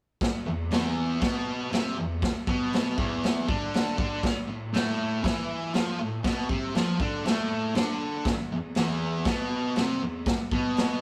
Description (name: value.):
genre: garage rock duo or trio.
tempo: 119 BPM.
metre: 4/4.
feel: straight.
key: unclear.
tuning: A4 = 441 Hz.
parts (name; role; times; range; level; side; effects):
raw garage drum kit; drums; 0.2-10.9 s; crash cymbal, kick drum, snare drum; -30 LUFS; equal; none.
thick fuzz guitar; riff; 0.5-11.0 s; E2 to F4; -31 LUFS; equal; distortion.
room: moderate stone room reverb, RT60 1.1 s.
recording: rough rehearsal-room recording.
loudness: -28 LUFS.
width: mono.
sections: 0.2-11.0 A section.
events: none.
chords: 0.2 E5; 4.2 A5; 8.2 E5.